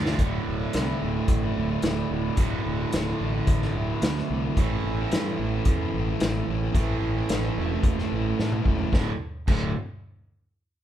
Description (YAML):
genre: classic rock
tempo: 110 BPM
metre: 4/4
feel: straight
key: unclear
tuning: A4 = 439 Hz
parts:
  - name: cranked stack guitar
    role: riff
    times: 0.0-9.7 s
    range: D2 to F4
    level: -29 LUFS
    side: right 8 dB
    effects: overdrive
  - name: crunchy overdriven guitar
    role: riff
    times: 0.0-9.7 s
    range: D2 to A4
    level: -32 LUFS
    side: left 6 dB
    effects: none
  - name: fuzz fingered electric bass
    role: bass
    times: 0.0-9.7 s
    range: D1 to A2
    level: -29 LUFS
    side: equal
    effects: overdrive
  - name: vintage drum kit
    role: drums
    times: 0.1-9.6 s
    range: crash cymbal, hi-hat, kick drum, snare drum, toms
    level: -27 LUFS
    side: equal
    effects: none
room: light reverb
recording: band playing live in one room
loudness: -23 LUFS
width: side -11 dB against mid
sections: 0.2-8.9 A section; 8.9-10.8 B section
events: drum fill 0.0, 8.4-8.9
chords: 0.2 Dsus2; 4.6 Am; 8.9 D5